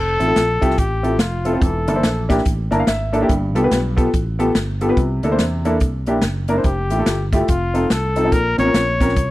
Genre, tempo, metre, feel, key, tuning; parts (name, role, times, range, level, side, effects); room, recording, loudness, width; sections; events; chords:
uptempo gospel; 143 BPM; 4/4; swing 62% on 8ths; F major; A4 = 440 Hz
breathy trumpet; melody; 0.0-2.3, 6.6-9.3 s; F4 to Db5; -21 LUFS; left 2 dB
fingered electric bass; bass; 0.0-9.3 s; E1 to E2; -22 LUFS; equal
clear upright piano; accompaniment; 0.2-9.1 s; G2 to A5; -19 LUFS; equal
swinging big-band drum kit; drums; 0.2-9.3 s; hi-hat, kick drum, snare drum; -20 LUFS; equal
small room reverb; dry, close 1970s-style studio recording; -16 LUFS; side -17 dB against mid
0.0-9.3 A section
upright piano fill 2.5-3.3
0.0 Fmaj7; 1.6 C13/E (rootless); 3.3 G9; 5.0 C9; 6.6 Fmaj9; 7.5 F7; 8.3 Bbmadd9